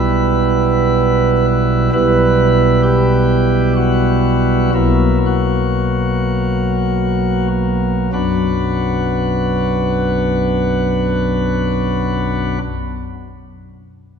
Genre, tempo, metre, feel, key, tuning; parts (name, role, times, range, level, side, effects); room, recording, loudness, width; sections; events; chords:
classical, chorale-style piece for pipe organ; 48-69 BPM; 3/4; rubato; B minor; A4 = 441 Hz
pipe organ, sparkling flutes; solo; 0.0-12.6 s; B1 to B4; -13 LUFS; equal
wet church reverb, RT60 2.4 s; recorded in a church or concert hall; -13 LUFS; side -6 dB against mid
0.0-8.1 A section; 8.1-11.8 B section
slowing down 0.6-8.1
0.0 Em/B; 4.7 F#/B; 8.1 Bm